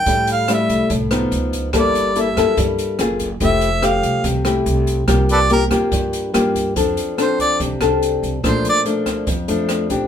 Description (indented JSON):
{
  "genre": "bossa nova",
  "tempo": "143 BPM",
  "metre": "4/4",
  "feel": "straight",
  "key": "F major",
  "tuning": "A4 = 439 Hz",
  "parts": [
    { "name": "mellow harmonica", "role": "melody", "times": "0.0-8.8 s", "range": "A4 to G5", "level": "-18 LUFS", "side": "equal", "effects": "none" },
    { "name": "nylon-string guitar", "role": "accompaniment", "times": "0.0-10.1 s", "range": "F2 to A4", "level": "-18 LUFS", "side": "left 3 dB", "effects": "none" },
    { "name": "upright bass", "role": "bass", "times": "0.0-10.1 s", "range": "F1 to A2", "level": "-23 LUFS", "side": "right 1 dB", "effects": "none" },
    { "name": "open jazz drum kit", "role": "drums", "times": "0.1-10.0 s", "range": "hi-hat, kick drum, rim click", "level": "-24 LUFS", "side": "equal", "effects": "none" }
  ],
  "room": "moderate small room reverb, RT60 0.5 s",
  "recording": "band playing live in one room",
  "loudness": "-15 LUFS",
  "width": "side -8 dB against mid",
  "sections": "0.0-6.8 A section; 6.8-10.1 A section",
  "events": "harmonica solo 0.0-6.8, 6.8-10.1",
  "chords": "0.1 Fmaj9/A; 1.3 Db9; 1.7 Gm69; 3.0 Gbmaj9; 3.4 Fmaj9; 5.1 C7sus4; 6.8 F6; 8.4 Bbmaj7"
}